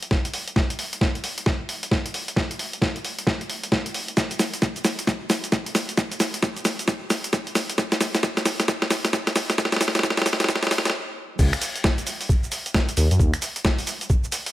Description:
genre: UK garage, two-step garage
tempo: 133 BPM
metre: 4/4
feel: swing 62% on 16ths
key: unclear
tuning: A4 = 439 Hz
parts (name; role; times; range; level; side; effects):
- boom bap sampler-style drum kit; drums; 0.0-14.5 s; crash cymbal, finger snaps, hi-hat, shaker, snare drum; -22 LUFS; equal; studio reverb
- electronic kick drum; drums; 0.1-14.2 s; none; -24 LUFS; equal; studio reverb
- dark detuned saw bass; bass; 11.4-13.3 s; C#2 to F#2; -19 LUFS; equal; sidechain pumping
room: light reverb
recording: high-pass filter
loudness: -21 LUFS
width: side -15 dB against mid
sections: 0.0-11.4 A section; 11.4-14.5 B section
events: build-up 0.0-11.4; drum fill 0.0-10.9; stop 10.9-11.4; drop 11.4-14.5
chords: none

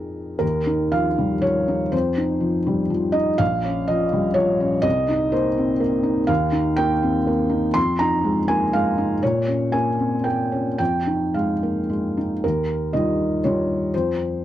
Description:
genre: neoclassical minimalist piano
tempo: 106-128 BPM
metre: 3/4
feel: rubato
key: F minor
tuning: A4 = 440 Hz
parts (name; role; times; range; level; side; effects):
- felt-muted upright piano; solo; 0.0-14.4 s; Bb1 to C6; -19 LUFS; equal; none
room: little or no reverb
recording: dry, close 1970s-style studio recording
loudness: -19 LUFS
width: side -12 dB against mid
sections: 0.4-12.4 A section; 12.4-14.4 B section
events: none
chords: 0.4 Ebadd9; 1.9 F5; 3.4 Bbm; 4.8 Cm7; 6.3 Ebadd9; 7.8 Fm7; 9.2 Bbm; 10.8 Fm7; 12.4 Ebadd9; 13.9 F5

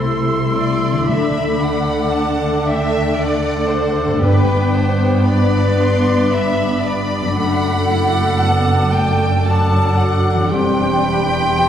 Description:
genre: classical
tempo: 57 BPM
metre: 3/4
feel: rubato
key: unclear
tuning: A4 = 444 Hz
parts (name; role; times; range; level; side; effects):
- rich chamber violin section; melody; 0.0-11.7 s; F#5 to C6; -28 LUFS; left 1 dB; none
- bright small flute group; second line; 0.0-11.7 s; C6 to E6; -26 LUFS; equal; none
- clear clarinet; second line; 0.0-11.7 s; G4 to B4; -24 LUFS; equal; none
- rich studio viola section; accompaniment; 0.0-11.7 s; E3 to E4; -23 LUFS; right 1 dB; none
- mellow French horn section; sustained chords; 0.0-10.9 s; G3 to E4; -23 LUFS; left 2 dB; none
- concert harp; arpeggios; 0.0-11.7 s; F#2 to A4; -25 LUFS; left 4 dB; none
- warm chamber cello section; bass; 0.0-11.7 s; E2 to D3; -22 LUFS; right 1 dB; none
- warm studio double bass section; bass; 0.0-11.7 s; E1 to D2; -22 LUFS; right 1 dB; none
- rich chamber violin section; second line; 0.5-11.7 s; B4 to A5; -21 LUFS; equal; none
- timpani; percussion; 1.1-5.8 s; G2 to D3; -21 LUFS; equal; none
room: wet scoring stage reverb, RT60 1.5 s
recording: heard from further back in the room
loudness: -14 LUFS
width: side -9 dB against mid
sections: 0.0-11.7 A section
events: none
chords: 0.0 Am/C; 1.1 D; 4.2 G; 7.4 D/F#; 10.5 C/E

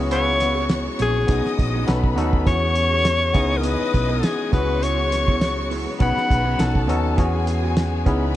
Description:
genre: lush 1970s-style soul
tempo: 102 BPM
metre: 4/4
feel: swing 54% on 16ths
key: unclear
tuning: A4 = 440 Hz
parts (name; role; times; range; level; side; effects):
- warm studio string section; second line; 0.0-8.4 s; G#4 to D#6; -30 LUFS; left 4 dB; none
- tine electric piano; accompaniment; 0.0-8.4 s; B3 to A4; -25 LUFS; left 2 dB; overdrive
- rich chamber string section; sustained chords; 0.0-8.4 s; C#3 to F#4; -34 LUFS; equal; none
- electric guitar through a small old amp; riff; 0.0-8.3 s; B3 to A4; -33 LUFS; right 7 dB; spring reverb
- hollow-body short-scale fingered electric bass; bass; 0.0-8.4 s; A#1 to E2; -23 LUFS; right 1 dB; none
- warm alto saxophone; melody; 0.1-6.9 s; G#4 to F#5; -22 LUFS; left 2 dB; none
- warm horn section; stabs; 0.1-0.5 s; C#3 to E4; -30 LUFS; right 1 dB; none
- cloth-damped thuddy drum kit; drums; 0.1-8.2 s; hi-hat, kick drum, snare drum; -22 LUFS; right 1 dB; none
room: little or no reverb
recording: nothing above 10.4 kHz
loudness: -18 LUFS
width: side -14 dB against mid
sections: 0.0-8.4 A section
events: band accent 0.1-2.5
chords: 0.0 F#9sus4/C#; 1.3 B6; 1.9 B7; 2.5 E69; 3.4 C#m7; 4.5 F#9sus4/C#; 6.0 B6; 6.6 B7; 7.2 E69

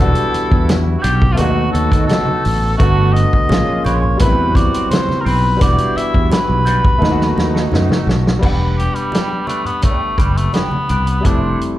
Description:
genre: lush 1970s-style soul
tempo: 85 BPM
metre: 4/4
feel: straight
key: E minor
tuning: A4 = 440 Hz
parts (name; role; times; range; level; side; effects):
- warm cor anglais; melody; 0.0-11.6 s; G3 to E5; -19 LUFS; equal; slapback echo
- clear concert grand piano; accompaniment; 0.0-11.8 s; D3 to F#5; -21 LUFS; left 2 dB; slapback echo
- electric guitar through a small old amp; riff; 0.0-11.8 s; G3 to B#4; -26 LUFS; right 2 dB; wah, slapback echo
- warm horn section; stabs; 0.0-8.1 s; D#3 to A4; -26 LUFS; right 2 dB; slapback echo
- fingered electric bass; bass; 0.0-11.5 s; E1 to D#3; -16 LUFS; equal; none
- warm soul drum kit; drums; 0.2-11.8 s; crash cymbal, hi-hat, kick drum, snare drum; -17 LUFS; equal; none
- congas; percussion; 0.7-11.4 s; none; -26 LUFS; right 3 dB; slapback echo
room: light reverb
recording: live gig heard through the venue's PA, club reverb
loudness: -12 LUFS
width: side -14 dB against mid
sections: 0.0-8.4 A section; 8.4-11.8 B section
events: drum fill 7.0-8.4; cor anglais solo 8.4-11.8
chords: 0.0 Em9; 1.4 B7/D#; 2.8 Gmaj9; 3.5 A#m9; 4.2 Am9 (rootless); 5.6 Em9; 7.0 B7/D#; 8.4 Em7; 11.2 Fmaj7

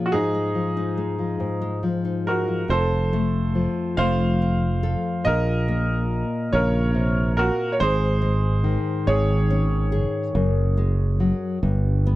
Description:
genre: acoustic folk-pop ballad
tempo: 47 BPM (dotted quarters)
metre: 6/8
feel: straight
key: unclear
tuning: A4 = 441 Hz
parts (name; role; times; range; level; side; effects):
- nylon-string guitar; accompaniment; 0.0-12.2 s; F2 to A4; -25 LUFS; left 2 dB; none
- bright concert grand piano; melody; 0.1-12.0 s; Eb4 to F5; -26 LUFS; right 1 dB; none
- sustaining fretless electric bass; bass; 2.7-12.2 s; F1 to Bb1; -21 LUFS; right 1 dB; none
room: little or no reverb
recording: dry, close 1970s-style studio recording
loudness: -20 LUFS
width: side -16 dB against mid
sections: 0.0-2.7 A section; 2.7-12.2 B section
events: none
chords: 0.1 Fm7/Ab; 2.7 F; 5.3 Bbm; 7.8 Absus4; 10.3 Gbsus2; 11.6 G

